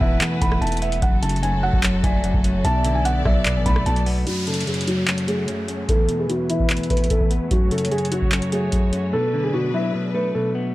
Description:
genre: hip hop, trap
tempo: 148 BPM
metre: 4/4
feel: half-time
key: F# minor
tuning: A4 = 440 Hz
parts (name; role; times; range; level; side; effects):
- felt-muted upright piano; melody; 0.0-10.5 s; E4 to B5; -25 LUFS; equal; low-pass filter, tape echo
- warm velvety synth lead; second line; 0.0-4.2 s; C#5 to F#5; -32 LUFS; right 2 dB; chorus, tape echo
- semi-hollow electric guitar; accompaniment; 0.0-10.7 s; E2 to C#4; -24 LUFS; left 1 dB; low-pass filter, tape echo
- rich studio string section; sustained chords; 0.0-10.7 s; A3 to D5; -31 LUFS; equal; low-pass filter
- long sustained 808-style bass; bass; 0.0-4.3 s; E1 to B1; -23 LUFS; equal; none
- booming analog drum machine; drums; 0.0-9.0 s; handclaps, hi-hat, kick drum, rim click; -21 LUFS; equal; none
- downlifter; sound effects; 4.3-7.5 s; none; -32 LUFS; right 1 dB; none
room: digital ambience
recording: echo-heavy mix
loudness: -18 LUFS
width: side -17 dB against mid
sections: 0.0-4.3 A section; 4.3-10.7 B section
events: filter sweep 4.3-10.7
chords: 0.0 Esus4; 1.0 F#m; 2.6 Bm7; 4.3 F#m; 5.9 Esus4; 7.5 F#m; 9.1 Bm7

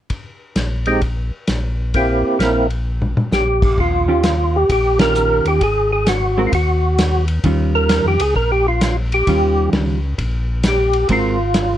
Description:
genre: soul jazz organ trio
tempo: 131 BPM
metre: 4/4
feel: swing 66% on 8ths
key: Eb mixolydian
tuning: A4 = 439 Hz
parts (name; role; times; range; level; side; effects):
- warm soul drum kit; drums; 0.1-11.7 s; crash cymbal, hi-hat, kick drum, ride cymbal, snare drum, toms; -22 LUFS; equal; none
- mellow tonewheel organ; bass; 0.6-11.8 s; Ab1 to F2; -19 LUFS; equal; slow rotary speaker
- percussive tonewheel organ; melody; 0.9-11.8 s; Ab3 to Bb4; -16 LUFS; right 1 dB; slow rotary speaker, chorus vibrato
- vintage hollow-body jazz guitar; accompaniment; 4.1-11.4 s; Eb3 to Bb4; -20 LUFS; right 2 dB; none
room: light reverb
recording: worn, warbling old tape, cassette tape, warbly pitch drift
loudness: -14 LUFS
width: side -11 dB against mid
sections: 0.1-3.8 A section; 3.8-11.8 B section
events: drum fill 2.9-3.3; band accent 4.9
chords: 0.1 N.C.; 3.8 Eb9; 5.6 Ab7(no3); 7.4 Eb9; 11.1 Ab9

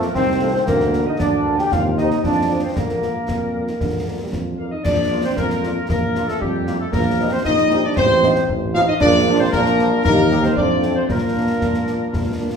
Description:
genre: military-style march for wind band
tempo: 115 BPM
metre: 2/4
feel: straight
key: Bb major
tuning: A4 = 440 Hz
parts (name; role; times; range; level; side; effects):
- mellow hollow large flute ensemble; second line; 0.0-4.5 s; Bb4 to G5; -27 LUFS; left 1 dB; none
- warm euphonium; second line; 0.0-12.6 s; Bb2 to F4; -25 LUFS; right 3 dB; none
- warm woodwind section; second line; 0.0-12.6 s; G4 to G5; -25 LUFS; left 1 dB; none
- warm trombone section; sustained chords; 0.0-12.5 s; F3 to G4; -24 LUFS; right 1 dB; none
- mellow tuba; bass; 0.0-12.6 s; A1 to Bb2; -22 LUFS; right 2 dB; none
- concert snare drum, concert bass drum and clash cymbals; drums; 0.0-12.6 s; none; -25 LUFS; left 1 dB; none
- mellow trumpet section; melody; 0.4-12.6 s; G4 to F5; -24 LUFS; left 2 dB; none
- dark French horn section; accompaniment; 0.4-12.6 s; A3 to D5; -25 LUFS; left 3 dB; none
room: wet large studio reverb, RT60 1.2 s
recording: heard from further back in the room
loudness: -16 LUFS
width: side -6 dB against mid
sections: 0.0-4.8 A section; 4.8-12.6 B section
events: none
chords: 0.0 F; 0.7 Bb/D; 1.7 Cm/Eb; 2.2 F; 2.8 Bb; 6.9 Cm7/Bb; 8.0 F7/A; 9.0 Bb; 10.1 Eb; 10.6 F; 11.1 Bb

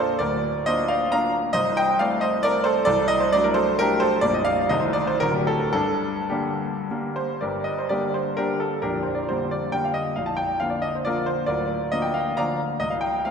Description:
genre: classical, romantic triple-time dance for piano with dotted rhythms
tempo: 100-148 BPM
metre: 3/4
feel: rubato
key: G minor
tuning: A4 = 441 Hz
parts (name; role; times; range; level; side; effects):
- clear grand piano; solo; 0.0-13.3 s; Bb0 to Bb5; -21 LUFS; equal; none
room: wet concert hall reverb, RT60 1.8 s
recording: minimal, uncompressed stereo recording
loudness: -21 LUFS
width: side -6 dB against mid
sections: 0.0-7.4 A section; 7.4-13.3 B section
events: none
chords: 0.2 Bb/D; 1.5 Adim/C; 2.9 D7/C; 4.2 Gm/Bb; 4.7 Adim/C; 5.2 D7; 5.7 Gm; 8.8 Gm/Bb; 10.2 Bb; 11.5 Bb/D

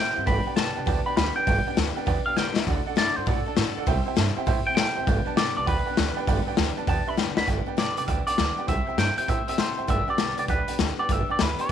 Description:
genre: rockabilly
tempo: 200 BPM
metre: 4/4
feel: swing 65% on 8ths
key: G major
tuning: A4 = 439 Hz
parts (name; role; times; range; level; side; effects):
- twangy electric guitar; melody; 0.0-11.7 s; A4 to B5; -28 LUFS; equal; phaser, tape echo
- clear upright piano; accompaniment; 0.0-11.7 s; A4 to A5; -31 LUFS; right 14 dB; none
- picked steel-string acoustic guitar; accompaniment; 0.0-11.7 s; G2 to A4; -35 LUFS; left 10 dB; none
- upright bass; bass; 0.0-11.7 s; G1 to A2; -29 LUFS; right 2 dB; none
- raw garage drum kit; drums; 0.3-11.7 s; hi-hat, kick drum, snare drum; -26 LUFS; left 3 dB; none
room: light reverb, small room ambience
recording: 1960s-style stereo with parts hard left and right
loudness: -22 LUFS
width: side -9 dB against mid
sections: 0.0-7.5 A section; 7.5-11.7 B section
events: clean electric guitar solo 0.0-7.5; drum fill 2.4-2.7, 7.2-7.5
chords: 0.3 G; 2.7 D; 3.9 C; 5.1 G; 8.7 C; 9.9 G

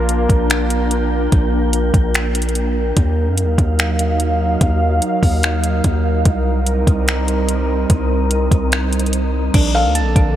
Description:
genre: hip hop, atmospheric cloud-rap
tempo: 146 BPM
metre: 4/4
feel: half-time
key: Bb major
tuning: A4 = 441 Hz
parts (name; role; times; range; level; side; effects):
- warbly tape-like pad; sustained chords; 0.0-10.4 s; D3 to F5; -20 LUFS; right 1 dB; chorus, built-in reverb, sidechain pumping
- long sustained 808-style bass; bass; 0.0-10.4 s; Bb1 to Gb2; -18 LUFS; equal; none
- wind-like tuned noise texture; texture; 0.0-10.4 s; Bb3 to G5; -28 LUFS; equal; built-in reverb
- smooth R&B drum kit; drums; 0.1-10.3 s; crash cymbal, finger snaps, hi-hat, kick drum; -17 LUFS; equal; none
- soft electric-piano-like synth keys; arpeggios; 9.5-10.4 s; D4 to A5; -21 LUFS; right 6 dB; chorus, digital delay
- felt-muted upright piano; melody; 9.7-9.9 s; F5; -19 LUFS; left 3 dB; digital delay
room: light reverb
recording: none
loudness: -14 LUFS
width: side -11 dB against mid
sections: 0.0-9.5 A section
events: none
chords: 0.0 Bb; 3.0 Ebmadd9; 6.3 Cm7; 9.5 Bbmaj7

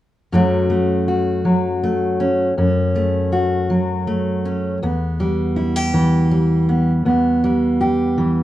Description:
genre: folk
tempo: 54 BPM (dotted quarters)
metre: 6/8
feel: straight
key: unclear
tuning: A4 = 436 Hz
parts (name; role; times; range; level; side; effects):
- fingerpicked steel-string acoustic guitar; accompaniment; 0.3-8.4 s; E2 to G4; -16 LUFS; equal; none
room: moderate studio ambience, RT60 0.4 s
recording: worn, warbling old tape, cassette tape, warbly pitch drift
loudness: -16 LUFS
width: side -14 dB against mid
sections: 0.3-8.4 A section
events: none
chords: 0.3 F#m; 4.8 Em

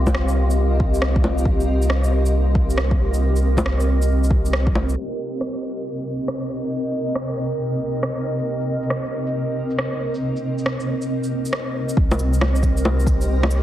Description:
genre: future garage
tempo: 137 BPM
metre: 4/4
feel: swing 65% on 16ths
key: C minor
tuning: A4 = 440 Hz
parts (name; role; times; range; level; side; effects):
- granular cloud pad; sustained chords; 0.0-13.6 s; C3 to Eb5; -24 LUFS; equal; built-in reverb, sidechain pumping
- warm sub bass; bass; 0.0-4.9, 12.0-13.6 s; C2; -19 LUFS; equal; sidechain pumping
- wind-like tuned noise texture; texture; 0.0-5.0, 12.6-13.6 s; C4 to C5; -34 LUFS; left 1 dB; built-in reverb
- electronic bongos, shaker, rim click and cabasa; drums; 0.1-13.6 s; none; -26 LUFS; equal; overdrive
- electronic kick drum; drums; 0.1-4.7, 12.0-13.2 s; none; -20 LUFS; equal; overdrive
room: light reverb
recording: heavily compressed radio sound, multiband compression, low-pass filter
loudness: -18 LUFS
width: side -12 dB against mid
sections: 0.0-5.0 A section; 5.0-12.0 B section; 12.0-13.6 C section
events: filter sweep 5.0-12.0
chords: 0.0 Cm7

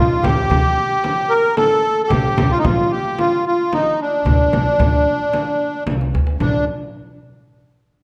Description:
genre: Arabic maqam ensemble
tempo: 112 BPM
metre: 4/4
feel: straight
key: D maqam kurd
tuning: A4 = 439 Hz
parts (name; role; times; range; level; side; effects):
- accordion; melody; 0.0-6.6 s; D4 to Bb4; -19 LUFS; equal; light tremolo tuning
- upright bass; bass; 0.0-6.7 s; C2 to D3; -23 LUFS; equal; none
- darbuka; percussion; 0.2-6.7 s; none; -28 LUFS; equal; none
- frame drum; percussion; 0.2-6.7 s; none; -25 LUFS; equal; none
room: wet recital hall reverb, RT60 1.6 s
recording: none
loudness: -17 LUFS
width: mono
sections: 0.0-6.4 A section; 6.4-8.0 B section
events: drum fill 5.9-6.4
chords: none

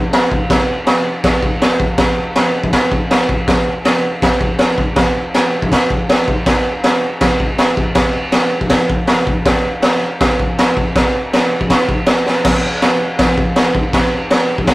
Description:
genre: rock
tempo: 161 BPM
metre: 4/4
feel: straight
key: none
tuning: none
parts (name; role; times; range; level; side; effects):
- raw garage drum kit; drums; 0.1-14.7 s; crash cymbal, kick drum, snare drum; -12 LUFS; equal; none
room: little or no reverb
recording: rough rehearsal-room recording, warm saturation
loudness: -12 LUFS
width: side -19 dB against mid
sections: 0.0-12.4 A section; 12.4-14.7 B section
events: drum fill 12.3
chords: none

